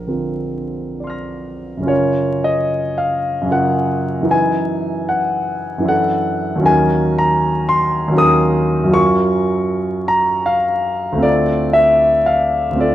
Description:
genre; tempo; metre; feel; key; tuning
classical, impressionist solo piano; 64-80 BPM; 3/4; rubato; unclear; A4 = 440 Hz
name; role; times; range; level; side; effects
clear concert grand piano; solo; 0.0-12.9 s; Bb1 to Bb6; -14 LUFS; equal; none
room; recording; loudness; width
moderate recital hall reverb, RT60 1.4 s; vinyl crackle; -14 LUFS; side -12 dB against mid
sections
0.0-1.9 A section; 1.9-12.9 B section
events
none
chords
0.0 Bbadd9; 1.9 Gbmaj7; 4.3 Emaj7/Gb; 5.9 Dadd9/F#; 6.7 Ebm7; 9.0 Gbmaj7; 11.3 Dm7

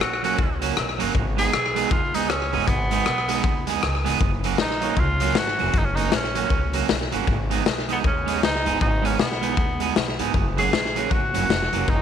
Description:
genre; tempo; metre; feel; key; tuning
ska; 157 BPM; 4/4; swing 61% on 8ths; F# major; A4 = 440 Hz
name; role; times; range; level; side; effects
clear tenor saxophone; melody; 0.0-12.0 s; B3 to G#4; -25 LUFS; equal; none
upright bass; bass; 0.0-12.0 s; E#1 to D#2; -28 LUFS; equal; none
raw garage drum kit; drums; 0.0-12.0 s; hi-hat, kick drum, rim click, snare drum; -24 LUFS; left 3 dB; slapback echo
electric guitar at the edge of break-up; accompaniment; 0.2-11.9 s; F#3 to G#4; -26 LUFS; right 14 dB; spring reverb, slapback echo
room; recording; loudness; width
light reverb, small room ambience; 1960s-style stereo; -20 LUFS; side -8 dB against mid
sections
0.0-12.0 A section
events
none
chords
0.0 F#; 1.1 G#m; 4.2 F#; 7.3 G#m; 10.3 F#

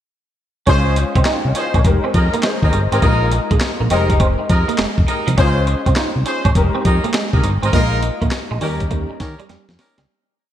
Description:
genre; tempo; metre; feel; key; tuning
R&B, new jack swing; 102 BPM; 4/4; swing 65% on 16ths; F minor; A4 = 439 Hz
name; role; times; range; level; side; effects
warm baby grand piano; accompaniment; 0.7-10.1 s; G3 to Ab5; -23 LUFS; left 4 dB; ensemble chorus
clean electric guitar; riff; 0.7-10.1 s; F3 to Eb4; -24 LUFS; right 5 dB; ensemble chorus
warm horn section; stabs; 0.7-10.0 s; Db4 to C5; -23 LUFS; equal; none
solid FM bass; bass; 0.7-10.1 s; F1 to Eb3; -18 LUFS; equal; none
breakbeat sampler-style drum kit; drums; 0.7-10.1 s; handclaps, hi-hat, kick drum, snare drum; -18 LUFS; equal; vintage 12-bit sampler grit
room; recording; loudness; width
moderate lush hall reverb, RT60 2.3 s; bright 1980s-style digital production; -14 LUFS; side -11 dB against mid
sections
0.7-10.1 verse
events
fade-out 7.7-10.1; drum fill 9.5-10.1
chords
0.7 Dbmaj7; 1.8 Fm11; 3.0 Bb7sus4; 3.9 Fm11; 5.4 Dbmaj7; 6.6 Fm11; 7.7 Bb7sus4; 8.6 Eb7

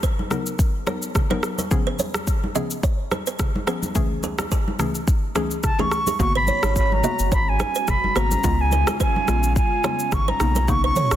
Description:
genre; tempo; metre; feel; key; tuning
afrobeats; 107 BPM; 4/4; swing 55% on 16ths; Db mixolydian; A4 = 439 Hz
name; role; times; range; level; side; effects
buzzing kalimba; riff; 0.0-11.1 s; G#4 to Eb5; -30 LUFS; right 7 dB; ping-pong delay
deep house drum kit; drums; 0.0-11.2 s; kick drum, rim click, shaker, toms; -23 LUFS; equal; soft clipping on snare
congas; percussion; 0.2-11.2 s; none; -31 LUFS; right 1 dB; none
mallet-like synth pluck; accompaniment; 0.3-11.2 s; C#2 to Bb4; -28 LUFS; left 3 dB; chorus
concert flute; melody; 5.6-11.2 s; Ab5 to C#6; -23 LUFS; right 1 dB; ping-pong delay
airy breathy pad; sustained chords; 6.2-11.2 s; Db3 to Gb4; -31 LUFS; equal; chorus
warm sub bass; bass; 6.2-11.2 s; Gb1 to Db2; -23 LUFS; equal; none
room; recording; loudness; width
light reverb; dense, heavily limited modern master; -19 LUFS; side -11 dB against mid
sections
0.0-6.2 A section; 6.2-11.2 B section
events
none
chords
0.0 Cbmaj7; 1.7 Db7; 4.0 Amaj7/C#; 6.2 Abm11; 8.4 Db7; 10.4 Cbmaj9

